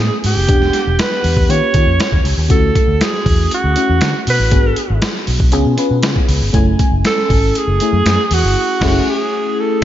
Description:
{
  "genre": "polished 1980s jazz-funk pop",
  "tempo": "119 BPM",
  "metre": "4/4",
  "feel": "straight",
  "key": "F# minor",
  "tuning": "A4 = 440 Hz",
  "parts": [
    { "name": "breathy alto saxophone", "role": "melody", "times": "0.0-9.8 s", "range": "F#4 to C#5", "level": "-17 LUFS", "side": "right 3 dB", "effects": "slapback echo" },
    { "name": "FM electric piano with soft pad layer", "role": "accompaniment", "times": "0.0-9.8 s", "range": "A3 to G#5", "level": "-19 LUFS", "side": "left 3 dB", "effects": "wide subtle chorus, slapback echo" },
    { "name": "vintage muted fingered electric bass", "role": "bass", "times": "0.0-9.0 s", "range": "E1 to D#3", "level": "-16 LUFS", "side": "equal", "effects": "none" },
    { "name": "boom bap sampler-style drum kit", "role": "drums", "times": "0.2-9.0 s", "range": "crash cymbal, hi-hat, kick drum, snare drum", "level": "-16 LUFS", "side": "equal", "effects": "none" }
  ],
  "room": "light reverb",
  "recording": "nothing above 7.5 kHz",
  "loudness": "-12 LUFS",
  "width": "side -12 dB against mid",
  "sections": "0.0-9.8 A section",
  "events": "band accent 8.6-9.8",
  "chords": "0.5 Em7; 1.5 D#9; 2.5 Dmaj9; 4.5 G#m7b5; 5.5 C#7; 6.5 F#m9"
}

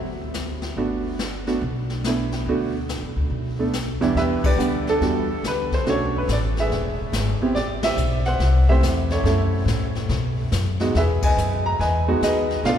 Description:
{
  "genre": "jazz piano trio",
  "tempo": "142 BPM",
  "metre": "4/4",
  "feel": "swing 65% on 8ths",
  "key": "G major, E minor from 4.2 s",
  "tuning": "A4 = 440 Hz",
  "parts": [
    { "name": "upright bass", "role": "bass", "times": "0.0-12.8 s", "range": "E1 to B2", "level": "-23 LUFS", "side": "left 1 dB", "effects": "none" },
    { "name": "jazz brush drum kit", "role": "drums", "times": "0.3-12.8 s", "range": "brushed snare drum, crash cymbal, hi-hat, kick drum, ride cymbal, snare drum", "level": "-29 LUFS", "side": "left 2 dB", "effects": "none" },
    { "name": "warm grand piano", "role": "melody", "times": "0.8-12.8 s", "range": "E2 to A#5", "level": "-23 LUFS", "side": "right 2 dB", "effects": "none" }
  ],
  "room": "wet cathedral reverb, RT60 6.8 s",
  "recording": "recorded in a church or concert hall",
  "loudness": "-20 LUFS",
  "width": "side -9 dB against mid",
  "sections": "0.0-4.2 A section; 4.2-12.8 B section",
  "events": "band accent 4.4, 7.8, 11.2",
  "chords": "0.0 N.C.; 0.8 Gmaj7; 4.2 Em7; 5.9 Bm7; 6.7 E; 7.6 Am7; 9.3 F#m7; 10.1 B5; 10.9 Emaj7"
}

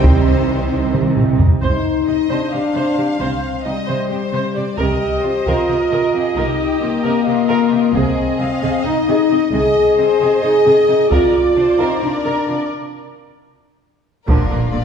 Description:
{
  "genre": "cinematic, epic orchestral film score",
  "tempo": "265 BPM (eighths)",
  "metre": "7/8",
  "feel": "straight",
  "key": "C minor",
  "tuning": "A4 = 444 Hz",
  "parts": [
    { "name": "rich chamber violin section", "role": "melody", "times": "0.0-0.9, 14.3-14.8 s", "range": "Bb4 to D5", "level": "-28 LUFS", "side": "left 6 dB", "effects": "none" },
    { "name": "rich symphonic violin section", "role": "second line", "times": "0.0-14.8 s", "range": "F4 to F5", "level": "-26 LUFS", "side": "left 3 dB", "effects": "none" },
    { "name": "rich studio viola section", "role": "accompaniment", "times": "0.0-14.8 s", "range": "D3 to Eb5", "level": "-23 LUFS", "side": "right 1 dB", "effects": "none" },
    { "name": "dark French horn section", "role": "sustained chords", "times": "0.0-14.8 s", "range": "F3 to Ab4", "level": "-16 LUFS", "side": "left 2 dB", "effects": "none" },
    { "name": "mellow trombone section", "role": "sustained chords", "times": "0.0-1.4 s", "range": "Eb3 to G3", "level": "-27 LUFS", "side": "right 4 dB", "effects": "none" },
    { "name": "clear symphonic double bass section", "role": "bass", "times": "0.0-11.3, 14.3-14.8 s", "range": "Bb1 to C2", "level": "-23 LUFS", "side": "right 3 dB", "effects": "none" },
    { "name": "mellow tuba", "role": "bass", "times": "0.0-1.4 s", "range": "C2", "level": "-21 LUFS", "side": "right 4 dB", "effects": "none" },
    { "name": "rich symphonic cello section", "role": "bass", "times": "0.0-14.8 s", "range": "Bb2 to C3", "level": "-25 LUFS", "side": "right 4 dB", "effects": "none" },
    { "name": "taiko ensemble", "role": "drums", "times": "0.0-14.8 s", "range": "none", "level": "-18 LUFS", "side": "equal", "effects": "none" },
    { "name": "impact", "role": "sound effects", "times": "14.3-14.8 s", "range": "none", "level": "-24 LUFS", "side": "equal", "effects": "none" }
  ],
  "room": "wet scoring stage reverb, RT60 1.6 s",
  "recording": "heard from further back in the room",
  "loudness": "-14 LUFS",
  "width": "side -7 dB against mid",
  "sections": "0.0-1.6 A section; 1.6-14.3 B section",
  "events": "drum fill 0.9-1.6; break 12.7-14.3; impact 14.3-14.8",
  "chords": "0.0 Cm; 4.8 Ebadd9/C; 7.9 Ab/C; 11.1 Bb/C; 14.3 Bb"
}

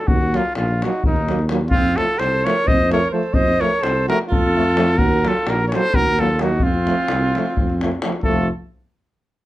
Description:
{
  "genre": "balkan folk, Balkan brass band",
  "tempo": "257 BPM (eighths)",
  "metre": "7/8",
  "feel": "straight",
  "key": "F phrygian dominant",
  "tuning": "A4 = 442 Hz",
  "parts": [
    { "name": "mellow trumpet", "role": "melody", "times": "0.0-8.5 s", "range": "Eb4 to Eb5", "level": "-20 LUFS", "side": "equal", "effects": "none" },
    { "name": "dark tuba", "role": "bass", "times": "0.1-8.5 s", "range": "F1 to F2", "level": "-22 LUFS", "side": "equal", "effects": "none" },
    { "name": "davul", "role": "percussion", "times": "0.1-8.5 s", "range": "none", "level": "-22 LUFS", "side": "left 1 dB", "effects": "none" },
    { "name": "clear French horn", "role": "accompaniment", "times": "0.3-8.5 s", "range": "A3 to Bb3", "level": "-26 LUFS", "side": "left 4 dB", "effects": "none" },
    { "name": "dark trombone", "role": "accompaniment", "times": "0.3-8.5 s", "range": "F3 to Gb3", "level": "-26 LUFS", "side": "right 4 dB", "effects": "none" },
    { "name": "clear alto saxophone", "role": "second line", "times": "0.8-8.5 s", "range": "Bb3 to C5", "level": "-24 LUFS", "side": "right 3 dB", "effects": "none" }
  ],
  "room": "moderate studio ambience, RT60 0.5 s",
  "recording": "dark, warm production",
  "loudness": "-16 LUFS",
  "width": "side -15 dB against mid",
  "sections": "0.0-8.2 A section; 8.2-9.5 B section",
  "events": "none",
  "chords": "0.0 Ebm; 1.7 F; 5.0 Ebm; 6.6 F"
}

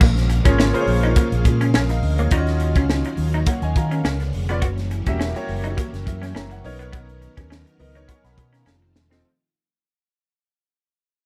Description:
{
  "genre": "polished 1980s jazz-funk pop",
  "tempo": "104 BPM",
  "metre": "4/4",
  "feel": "swing 54% on 16ths",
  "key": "unclear",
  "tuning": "A4 = 440 Hz",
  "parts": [
    { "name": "string machine, violins", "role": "sustained chords", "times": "0.0-9.2 s", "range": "Db3 to F5", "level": "-34 LUFS", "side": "equal", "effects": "ensemble chorus" },
    { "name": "semi-hollow electric guitar", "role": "riff", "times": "0.0-9.2 s", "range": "Bb3 to Gb4", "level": "-30 LUFS", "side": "equal", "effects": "ensemble chorus" },
    { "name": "overdriven fingered electric bass", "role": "bass", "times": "0.0-9.2 s", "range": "Fb1 to Eb3", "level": "-24 LUFS", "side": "equal", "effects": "none" },
    { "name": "crisp fusion drum kit", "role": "drums", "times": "0.0-9.2 s", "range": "crash cymbal, hi-hat, kick drum, snare drum", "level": "-22 LUFS", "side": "equal", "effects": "none" },
    { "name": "clear grand piano", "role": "accompaniment", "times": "0.4-9.3 s", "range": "Bb3 to C#6", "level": "-29 LUFS", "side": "equal", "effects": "analog chorus" }
  ],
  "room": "little or no reverb",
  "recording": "none",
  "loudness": "-20 LUFS",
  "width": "mono",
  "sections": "0.0-9.2 A section",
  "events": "fade-out 0.0-9.2; drum fill 8.7-9.2",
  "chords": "0.0 Bbm7; 2.3 Ebm9; 4.0 Db7b9; 4.6 Gb7b9; 6.6 Bmaj9; 8.7 F7"
}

